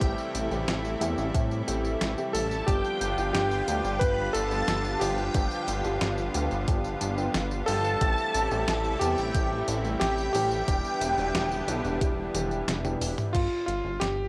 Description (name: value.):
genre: synthwave.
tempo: 90 BPM.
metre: 4/4.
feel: straight.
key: A minor.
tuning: A4 = 440 Hz.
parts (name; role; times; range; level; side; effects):
warm electric grand piano; melody; 0.0-14.3 s; F4 to B4; -33 LUFS; equal; cassette tape, analog delay.
string machine, violins; second line; 0.0-12.6 s; G5 to B5; -36 LUFS; equal; ensemble chorus, cassette tape.
lush unison pad; sustained chords; 0.0-13.3 s; C3 to F4; -36 LUFS; equal; chorus, sidechain pumping, cassette tape.
dark baby grand piano; stabs; 0.0-13.3 s; E3 to G4; -38 LUFS; equal; cassette tape.
chorused synth bass; bass; 0.0-14.3 s; E1 to A2; -34 LUFS; equal; none.
clean 12-bit digital drum machine; drums; 0.0-14.1 s; crash cymbal, hi-hat, snare drum, tambourine, toms; -36 LUFS; equal; overdrive, cassette tape.
electronic kick drum; drums; 0.0-13.5 s; none; -30 LUFS; equal; overdrive, cassette tape.
room: moderate studio ambience, RT60 0.5 s.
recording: home recording on cassette.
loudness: -28 LUFS.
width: mono.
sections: 0.0-13.3 A section.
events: drum fill 12.3-13.3.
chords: 0.0 Am7; 2.7 G7; 8.0 Am7; 10.7 Em7; 13.3 G5.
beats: | 0.01 0.68 1.35 2.01 | 2.68 3.35 4.01 4.68 | 5.35 6.01 6.68 7.35 | 8.01 8.68 9.35 10.01 | 10.68 11.35 12.01 12.68 | 13.35 14.01.